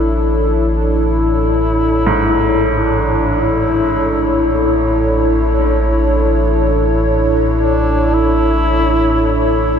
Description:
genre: dark ambient drone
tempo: 51 BPM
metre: 4/4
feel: straight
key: A major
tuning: A4 = 440 Hz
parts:
  - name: mellow duduk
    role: melody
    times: 0.0-9.8 s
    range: D4 to E4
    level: -21 LUFS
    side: left 1 dB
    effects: diffuse ambient delay
  - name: dark analog pad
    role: sustained chords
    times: 0.0-9.8 s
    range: D4 to C#5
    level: -15 LUFS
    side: equal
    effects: chorus
  - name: analog drone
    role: drone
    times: 0.0-9.8 s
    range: A1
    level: -18 LUFS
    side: equal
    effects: lush chorus
  - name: bright baby grand piano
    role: arpeggios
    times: 2.1-9.8 s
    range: G#2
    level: -23 LUFS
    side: right 2 dB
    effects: diffuse ambient delay
room: wet cathedral reverb, RT60 6.2 s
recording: in a vast, echoing space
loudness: -12 LUFS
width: side -7 dB against mid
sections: 0.0-9.8 A section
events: filter sweep on synth drone 0.0-9.8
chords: 0.0 A5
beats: | 1.05 2.23 3.40 4.58 | 5.76 6.93 8.11 9.29

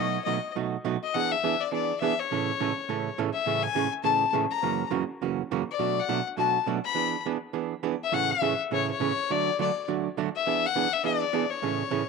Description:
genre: country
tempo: 206 BPM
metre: 4/4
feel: swing 61% on 8ths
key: A major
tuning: A4 = 440 Hz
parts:
  - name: clear fiddle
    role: melody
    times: 0.0-12.1 s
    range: C#5 to B5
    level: -27 LUFS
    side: left 10 dB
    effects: none
  - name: archtop guitar, miked and amplified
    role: accompaniment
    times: 0.0-12.0 s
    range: F#2 to A4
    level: -28 LUFS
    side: right 11 dB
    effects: none
room: moderate spring reverb, RT60 2.9 s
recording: 1960s-style stereo with parts hard left and right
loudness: -25 LUFS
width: side -4 dB against mid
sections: 0.0-12.1 A section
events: none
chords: 0.0 B7; 1.1 E7; 2.3 A; 3.5 Amaj7; 4.6 F#7; 5.8 Bm7; 7.0 E7; 8.1 Amaj7; 9.3 D; 10.5 E7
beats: 0.27 0.56 0.85 | 1.14 1.43 1.72 2.01 | 2.30 2.59 2.88 3.18 | 3.47 3.76 4.05 4.34 | 4.63 4.92 5.21 5.50 | 5.79 6.09 6.38 6.67 | 6.96 7.25 7.54 7.83 | 8.12 8.42 8.71 9.00 | 9.29 9.58 9.87 10.16 | 10.46 10.75 11.04 11.33 | 11.62 11.91

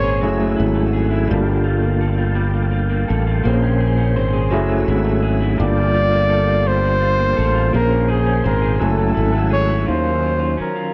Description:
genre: slow six-eight R&B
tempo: 56 BPM (dotted quarters)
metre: 6/8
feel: straight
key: unclear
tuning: A4 = 440 Hz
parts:
  - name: warm flugelhorn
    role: melody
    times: 0.0-0.9, 5.6-10.9 s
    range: Ab4 to D5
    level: -22 LUFS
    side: equal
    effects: analog delay
  - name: electric guitar through a small old amp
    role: second line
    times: 0.0-10.9 s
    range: Eb3 to C5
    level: -27 LUFS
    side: equal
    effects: analog delay
  - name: overdriven tine electric piano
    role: accompaniment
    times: 0.0-10.9 s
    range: Bb2 to G#5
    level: -24 LUFS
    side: equal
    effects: fast tremolo, analog delay
  - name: tonewheel organ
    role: sustained chords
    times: 0.0-9.9 s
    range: A3 to E6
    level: -34 LUFS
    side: equal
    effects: overdrive, chorus vibrato, slow rotary speaker
  - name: sustaining fretless electric bass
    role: bass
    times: 0.0-10.6 s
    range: F#1 to Eb2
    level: -21 LUFS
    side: equal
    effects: analog chorus
room: light reverb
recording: echo-heavy mix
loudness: -18 LUFS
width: mono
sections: 0.0-9.9 A section; 9.9-10.9 B section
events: none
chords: 0.2 F#m9; 1.3 Gm9; 3.4 Bbm9; 4.5 F#m9; 5.6 Gm9; 7.7 Bbm9; 8.8 F#m9; 9.9 Ebm9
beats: 0.22 | 1.29 2.36 | 3.44 4.51 | 5.58 6.65 | 7.72 8.79 | 9.86 10.94

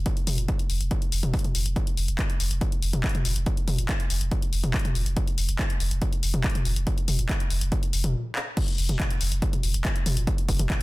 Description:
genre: driving peak-time techno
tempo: 141 BPM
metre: 4/4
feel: straight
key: unclear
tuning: A4 = 442 Hz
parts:
  - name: saturated sub bass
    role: bass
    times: 0.0-10.7 s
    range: F1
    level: -27 LUFS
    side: equal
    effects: overdrive, sidechain pumping, low-pass filter
  - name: electronic kick drum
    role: drums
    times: 0.1-10.8 s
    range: none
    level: -26 LUFS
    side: equal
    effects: none
  - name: punchy analog drum machine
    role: drums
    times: 0.1-10.8 s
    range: crash cymbal, handclaps, hi-hat, toms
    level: -29 LUFS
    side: left 2 dB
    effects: overdrive, sidechain pumping on hats, sidechain pumping on toms, sidechain pumping on cymbals
room: digital ambience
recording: dense, heavily limited modern master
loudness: -23 LUFS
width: side -20 dB against mid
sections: 0.0-8.6 A section; 8.6-10.8 B section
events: stop 8.1-8.6; drum fill 8.4; drop 8.6-10.8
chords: none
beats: | 0.06 0.48 0.91 1.34 | 1.76 2.19 2.61 3.04 | 3.46 3.89 4.32 4.74 | 5.17 5.59 6.02 6.44 | 6.87 7.29 7.72 8.14 | 8.57 9.00 9.42 9.85 | 10.27 10.70

